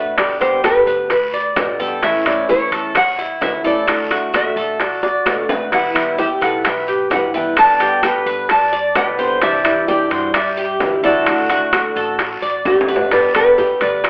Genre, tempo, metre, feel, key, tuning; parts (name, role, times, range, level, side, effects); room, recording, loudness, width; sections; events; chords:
latin, Cuban son and guajira; 130 BPM; 4/4; straight; G major; A4 = 438 Hz
nylon-string guitar; melody; 0.0-14.1 s; G4 to A5; -20 LUFS; equal; plate reverb
fingerpicked steel-string acoustic guitar; accompaniment; 0.0-14.1 s; B2 to G4; -25 LUFS; equal
Cuban tres; arpeggios; 0.0-14.1 s; C#4 to E5; -24 LUFS; equal
upright bass; bass; 0.0-14.1 s; E1 to G2; -42 LUFS; equal
bongos; percussion; 0.2-14.1 s; -28 LUFS; equal
claves; percussion; 0.2-14.1 s; -32 LUFS; equal
guiro; percussion; 0.2-14.1 s; -36 LUFS; equal
maracas; percussion; 0.2-14.1 s; -44 LUFS; equal
timbales; percussion; 0.2-14.1 s; -23 LUFS; equal
silver concert flute; second line; 4.8-12.6 s; F#4 to D5; -24 LUFS; equal
moderate studio reverb, RT60 0.8 s; telephone sound; -16 LUFS; mono
0.0-13.1 A section
drum fill 5.0-5.7, 12.7-13.1
0.2 G; 2.0 A; 3.9 D; 5.7 Em; 7.6 G; 9.4 Cadd9; 11.3 D; 13.1 G